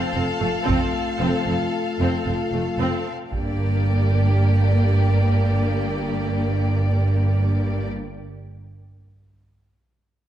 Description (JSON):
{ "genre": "cinematic, epic orchestral film score", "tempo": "113 BPM", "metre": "4/4", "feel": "straight", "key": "G minor", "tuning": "A4 = 440 Hz", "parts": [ { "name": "rich chamber violin section", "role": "melody", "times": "0.0-7.9 s", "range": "D5 to F5", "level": "-31 LUFS", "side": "left 5 dB", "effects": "none" }, { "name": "rich symphonic violin section", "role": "second line", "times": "0.0-7.9 s", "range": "G4 to A4", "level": "-31 LUFS", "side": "left 1 dB", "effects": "none" }, { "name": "clear symphonic viola section", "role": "accompaniment", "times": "0.0-7.9 s", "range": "A3 to C4", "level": "-28 LUFS", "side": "right 1 dB", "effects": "none" }, { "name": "mellow French horn section", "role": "sustained chords", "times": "0.0-7.9 s", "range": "A3 to F4", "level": "-29 LUFS", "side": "left 4 dB", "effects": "none" }, { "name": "clear symphonic cello section", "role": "bass", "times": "0.1-7.9 s", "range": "F2 to G2", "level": "-25 LUFS", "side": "right 2 dB", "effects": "none" }, { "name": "warm symphonic double bass section", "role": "bass", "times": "0.1-7.9 s", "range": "F1 to G1", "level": "-23 LUFS", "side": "right 2 dB", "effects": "none" }, { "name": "taiko ensemble", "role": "drums", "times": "0.7-4.3 s", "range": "none", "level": "-29 LUFS", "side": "equal", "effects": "none" } ], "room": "wet scoring stage reverb, RT60 1.9 s", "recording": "dark, warm production, faint mains hum", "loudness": "-19 LUFS", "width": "side -11 dB against mid", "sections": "0.0-3.3 A section; 3.3-7.6 B section", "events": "none", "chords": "0.0 F; 3.3 Gm", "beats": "0.14 0.67 | 1.20 1.73 2.26 2.79 | 3.33 3.86 4.39 4.92 | 5.45 5.98 6.52 7.05" }